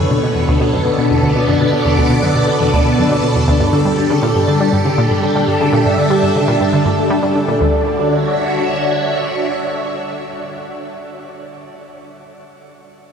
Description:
ambient; 120 BPM; 4/4; straight; D major; A4 = 440 Hz
phased string machine; sustained chords; 0.0-11.0 s; B2 to E5; -17 LUFS; right 1 dB; ensemble chorus, phaser, shimmer reverb
concert harp; arpeggios; 0.0-10.4 s; D3 to A4; -19 LUFS; left 3 dB; auto-pan, ping-pong delay, shimmer reverb
analog pluck; riff; 0.0-7.8 s; D2 to G3; -18 LUFS; right 1 dB; chorus, ping-pong delay
wet huge ambient reverb, RT60 8.8 s; cassette tape; -12 LUFS; side -7 dB against mid
0.0-7.6 A section; 7.6-11.6 B section
filter sweep on synth arpeggio sound 0.0-7.6
0.0 Bm7; 3.6 Gm6; 7.6 Dmaj7

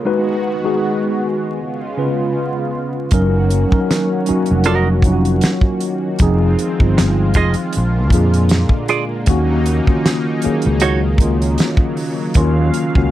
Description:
R&B, neo-soul; 78 BPM; 4/4; swing 54% on 16ths; Eb minor; A4 = 441 Hz
mellow tine electric piano; accompaniment; 0.0-13.1 s; Bb2 to Cb5; -18 LUFS; left 1 dB; medium stereo tremolo
warm analog pad; sustained chords; 0.0-13.1 s; Db3 to F5; -24 LUFS; equal; chorus
sustaining fretless electric bass; bass; 3.1-13.1 s; F1 to F2; -16 LUFS; equal; wide subtle chorus
damped 70s drum kit; drums; 3.1-13.1 s; hi-hat, kick drum, snare drum; -16 LUFS; equal
hollow-body jazz guitar; second line; 4.7-11.0 s; Eb4 to Eb5; -17 LUFS; right 6 dB
moderate small room reverb, RT60 0.5 s; vinyl crackle; -14 LUFS; side -13 dB against mid
0.0-13.1 A section
0.0 Abm7; 1.6 Db7; 3.1 Gb6; 6.2 Fm7; 7.7 Bb7; 9.3 Ebm7

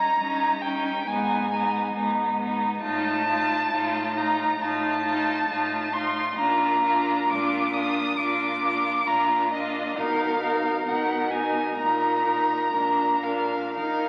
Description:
classical, slow romantic movement for string quartet; 67 BPM; 4/4; rubato; A4 = 440 Hz
rich violin; melody; 0.0-14.1 s; Eb5 to Eb6; -27 LUFS; equal
clear violin; second line; 0.0-14.1 s; Eb4 to A#4; -31 LUFS; equal
rich viola; accompaniment; 0.0-14.1 s; Cb4 to Eb4; -32 LUFS; equal
rich cello; bass; 0.0-14.1 s; G2 to Eb3; -35 LUFS; equal
wet recital hall reverb, RT60 1.5 s; very old 78 rpm record, vinyl crackle; -25 LUFS; mono
0.0-14.1 A section
0.0 Eb7/G; 1.1 Abm; 2.8 F7/A; 6.4 Bb; 10.0 Bmaj7; 11.8 Eb5/Bb; 12.7 Bb

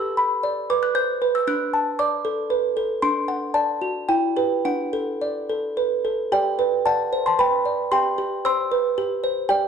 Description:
classical, lullaby for music box; 114 BPM; 3/4; rubato; G major; A4 = 440 Hz
music box; solo; 0.0-9.7 s; D4 to G6; -20 LUFS; right 1 dB
moderate recital hall reverb, RT60 1.7 s; dark, warm production; -20 LUFS; side -7 dB against mid
0.0-6.3 A section; 6.3-9.7 B section
0.0 G; 1.5 D; 3.0 D7; 4.1 Em; 4.7 D; 6.3 G; 7.9 C/G

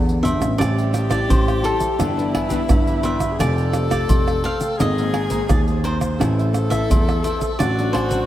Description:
samba and choro; 86 BPM; 4/4; straight; A4 = 439 Hz
cavaquinho; melody; 0.0-8.3 s; A4 to F5; -27 LUFS; equal; analog delay
breathy tenor saxophone; second line; 0.0-8.3 s; E4 to A4; -26 LUFS; left 3 dB; analog delay
nylon-string guitar; accompaniment; 0.0-8.3 s; G2 to A4; -27 LUFS; left 3 dB; analog chorus
dark baby grand piano; bass; 0.0-8.2 s; F1 to E2; -21 LUFS; right 1 dB
tube shaker, pandeiro, agogo bells, surdo and tamborim; percussion; 0.1-8.3 s; -21 LUFS; equal
cavaquinho; accompaniment; 0.6-8.2 s; D4 to Ab5; -32 LUFS; right 5 dB
light reverb, small room reverb; -17 LUFS; side -13 dB against mid
0.0-8.3 A section
0.0 Gadd9; 0.6 Am7; 2.0 Em7/G; 3.4 Fadd9; 4.8 Abadd9; 6.2 Am; 7.6 D7/A

